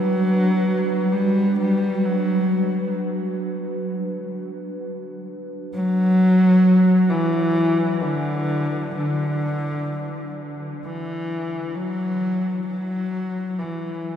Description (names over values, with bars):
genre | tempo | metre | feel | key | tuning
ambient | free time | none | none | unclear | A4 = 443 Hz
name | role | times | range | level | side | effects
dark cello | melody | 0.0-14.2 s | D3 to G3 | -20 LUFS | equal | diffuse ambient delay
dark analog pad | sustained chords | 0.0-10.8 s | D4 to B4 | -30 LUFS | right 1 dB | chorus, phaser
room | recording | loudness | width
wet huge ambient reverb, RT60 7.7 s | dark, warm production | -19 LUFS | side -9 dB against mid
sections
0.0-10.8 A section; 10.8-14.2 B section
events
fade-out on analog synth pad 0.0-10.8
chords
0.0 Bm; 10.8 N.C.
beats
free time